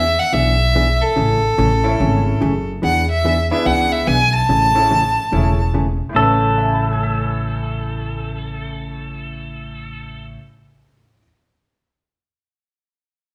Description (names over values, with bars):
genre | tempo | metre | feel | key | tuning
country, western swing | 144 BPM | 4/4 | swing 64% on 8ths | A major | A4 = 442 Hz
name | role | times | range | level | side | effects
clear fiddle | melody | 0.0-5.7 s | A4 to A5 | -20 LUFS | equal | none
hollow-body jazz guitar | accompaniment | 0.0-10.4 s | A2 to G#4 | -25 LUFS | equal | none
upright bass | bass | 0.0-10.4 s | E1 to E2 | -23 LUFS | equal | none
bright upright piano | accompaniment | 1.8-11.2 s | A2 to E7 | -29 LUFS | equal | none
clean lap steel guitar | second line | 6.2-10.3 s | A4 | -24 LUFS | equal | none
room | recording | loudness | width
wet large studio reverb, RT60 1.2 s | band playing live in one room | -17 LUFS | mono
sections
0.0-2.8 A section; 2.8-6.2 B section; 6.2-9.5 C section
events
none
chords
0.0 E7; 1.2 Amaj7; 2.8 E7; 4.5 Amaj7